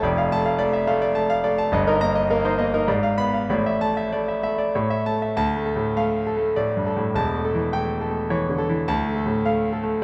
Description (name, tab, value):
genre	classical, virtuoso piano study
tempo	96-107 BPM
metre	3/4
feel	rubato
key	D minor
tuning	A4 = 436 Hz
part	bright concert grand piano	solo	0.0-10.0 s	E1 to B5	-22 LUFS	equal	none
room	moderate concert hall reverb, RT60 1.7 s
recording	none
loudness	-22 LUFS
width	mono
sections	0.0-5.4 A section; 5.4-10.0 B section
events	none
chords	0.0 Dm/F; 1.7 Eb/G; 2.9 G#dim7; 3.5 Asus4; 4.7 A; 5.4 Dm; 7.1 A7/E; 8.9 Dm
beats	| 0.02 0.59 1.15 | 1.72 2.29 2.88 | 3.50 4.13 4.75 | 5.36 5.96 6.56 | 7.14 7.71 8.29 | 8.87 9.44 10.01